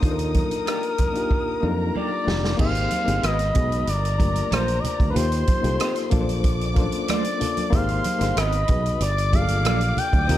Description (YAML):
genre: lush 1970s-style soul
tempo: 94 BPM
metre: 4/4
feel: straight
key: unclear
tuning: A4 = 440 Hz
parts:
  - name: warm studio string section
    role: second line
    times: 0.0-10.4 s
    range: Eb4 to Eb6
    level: -34 LUFS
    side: equal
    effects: none
  - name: reed electric piano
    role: accompaniment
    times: 0.0-10.4 s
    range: Bb2 to D5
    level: -28 LUFS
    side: left 4 dB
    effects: fast tremolo
  - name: fingered electric bass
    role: bass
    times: 0.0-10.4 s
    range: F1 to F2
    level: -24 LUFS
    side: right 1 dB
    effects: none
  - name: vintage drum kit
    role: drums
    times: 0.0-10.4 s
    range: crash cymbal, hi-hat, kick drum, rim click, snare drum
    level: -24 LUFS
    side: right 1 dB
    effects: none
  - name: congas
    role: percussion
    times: 0.0-10.4 s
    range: none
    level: -32 LUFS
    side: right 3 dB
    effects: none
  - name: expressive synth lead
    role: melody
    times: 0.1-10.4 s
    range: Bb4 to G5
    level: -26 LUFS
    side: left 1 dB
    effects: chorus, tape echo
  - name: electric guitar through a small old amp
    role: riff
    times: 0.7-9.8 s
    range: A3 to Eb5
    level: -31 LUFS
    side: right 7 dB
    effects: wide subtle chorus
room: small room ambience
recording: dark, warm production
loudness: -20 LUFS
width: side -13 dB against mid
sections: 0.0-2.6 A section; 2.6-10.4 B section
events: drum fill 1.3-2.6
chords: 0.0 Ebmaj9; 2.6 Abmaj9; 3.2 Abm9; 3.9 Gm9; 5.2 Eb69; 6.1 Bbmaj9; 7.7 Abmaj9; 8.4 Abm9; 9.0 Gm9